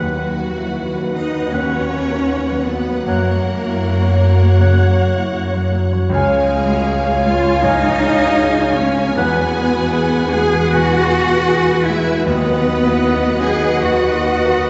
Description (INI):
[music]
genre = cinematic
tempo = 78 BPM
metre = 4/4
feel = rubato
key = unclear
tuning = A4 = 440 Hz
[part]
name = warm studio violin section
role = melody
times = 0.0-14.7 s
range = F#5 to G#5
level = -32 LUFS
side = equal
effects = none
[part]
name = clear studio violin section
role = second line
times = 0.0-14.7 s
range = F#4 to G#5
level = -32 LUFS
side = equal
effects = none
[part]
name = mellow hollow large flute ensemble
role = second line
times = 0.0-14.7 s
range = F#5 to G#5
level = -31 LUFS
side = equal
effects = none
[part]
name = warm clarinet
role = second line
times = 0.0-14.7 s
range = B4 to C#5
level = -29 LUFS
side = equal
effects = none
[part]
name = warm oboe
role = second line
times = 0.0-14.7 s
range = D#5 to F#5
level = -30 LUFS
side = equal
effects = none
[part]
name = rich studio viola section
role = accompaniment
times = 0.0-14.7 s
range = B4 to F#5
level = -27 LUFS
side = equal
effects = none
[part]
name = warm baby grand piano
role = accompaniment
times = 0.0-14.7 s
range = C#2 to C#5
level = -25 LUFS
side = equal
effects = none
[part]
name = dark French horn section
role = sustained chords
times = 0.0-14.7 s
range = F#4 to E#5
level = -25 LUFS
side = equal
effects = none
[part]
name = concert harp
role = arpeggios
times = 0.0-14.7 s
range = F#2 to C#6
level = -30 LUFS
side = equal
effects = none
[part]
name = dark studio cello section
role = bass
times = 0.0-14.7 s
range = F#3 to G#4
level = -22 LUFS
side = equal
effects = none
[part]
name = rich studio double bass section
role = bass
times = 0.0-14.7 s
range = C#2 to F#2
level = -21 LUFS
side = equal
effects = none
[sound]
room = wet scoring stage reverb, RT60 1.9 s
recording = heard from further back in the room, nothing above 7.8 kHz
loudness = -16 LUFS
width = mono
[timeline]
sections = 0.0-14.7 A section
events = none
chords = 0.0 B/D#; 3.1 F#; 6.1 C#; 9.2 Eadd9; 12.3 B/D#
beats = | 0.00 0.77 1.53 2.31 | 3.08 3.84 4.60 5.36 | 6.13 6.89 7.64 8.41 | 9.18 9.94 10.71 11.49 | 12.26 13.04 13.83 14.63